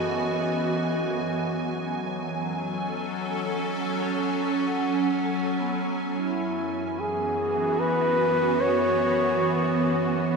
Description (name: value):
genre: ambient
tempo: free time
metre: none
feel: none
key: unclear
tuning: A4 = 440 Hz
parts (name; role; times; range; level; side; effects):
- evolving wavetable pad; sustained chords; 0.0-10.4 s; F#2 to G#5; -25 LUFS; right 2 dB; ensemble chorus, built-in reverb
- vibraphone with medium mallets; arpeggios; 0.0-10.4 s; B3 to F#5; -34 LUFS; equal; ping-pong delay
- mellow flugelhorn; melody; 6.2-10.2 s; E4 to C#5; -27 LUFS; left 1 dB; ping-pong delay
room: wet cathedral reverb, RT60 6.5 s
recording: in a vast, echoing space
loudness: -23 LUFS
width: side -4 dB against mid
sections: 0.0-10.4 A section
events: fade-out on vibraphone 0.0-10.4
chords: 0.0 E6/F#; 1.5 F#madd9; 6.2 E6/F#